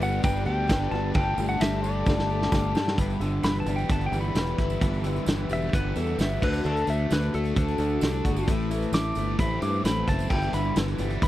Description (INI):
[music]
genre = folk rock and heartland rock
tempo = 131 BPM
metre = 4/4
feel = straight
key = G major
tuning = A4 = 440 Hz
[part]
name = pedal steel guitar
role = melody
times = 0.0-11.3 s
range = A4 to D6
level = -31 LUFS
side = equal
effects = none
[part]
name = picked twelve-string acoustic guitar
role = accompaniment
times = 0.0-11.3 s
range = G2 to A4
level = -32 LUFS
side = left 6 dB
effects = none
[part]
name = biting overdriven guitar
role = riff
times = 0.0-11.3 s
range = G2 to G4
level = -31 LUFS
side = right 1 dB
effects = none
[part]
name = fingered electric bass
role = bass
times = 0.0-11.3 s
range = E1 to G2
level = -28 LUFS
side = equal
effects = none
[part]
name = tambourine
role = percussion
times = 0.0-11.3 s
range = none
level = -49 LUFS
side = right 13 dB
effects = none
[part]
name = loose indie drum kit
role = drums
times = 0.2-11.3 s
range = crash cymbal, hi-hat, kick drum, ride cymbal, snare drum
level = -27 LUFS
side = equal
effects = none
[sound]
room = little or no reverb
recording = dry, close 1970s-style studio recording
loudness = -23 LUFS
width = side -14 dB against mid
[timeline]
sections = 0.0-3.0 A section; 3.0-11.3 B section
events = drum fill 2.1-3.0; pedal steel guitar solo 3.0-11.3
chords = 0.0 G; 1.2 Gsus2; 3.0 G6; 6.4 D; 8.5 Am; 10.3 G6